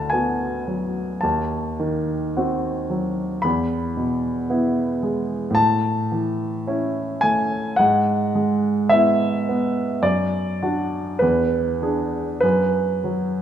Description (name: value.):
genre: classical, romantic nocturne for solo piano.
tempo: 49-57 BPM.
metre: 4/4.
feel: rubato.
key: unclear.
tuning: A4 = 440 Hz.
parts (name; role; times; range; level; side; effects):
warm baby grand piano; solo; 0.0-13.4 s; D2 to B5; -19 LUFS; equal; none.
room: moderate scoring stage reverb, RT60 2.2 s.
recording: minimal, uncompressed stereo recording.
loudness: -19 LUFS.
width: side -9 dB against mid.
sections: 0.0-13.4 A section.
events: none.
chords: 0.0 Bm/D; 1.2 D#dim7; 3.5 E; 5.6 A; 7.8 E/G#; 10.0 D/F#; 11.2 E7; 12.4 N.C..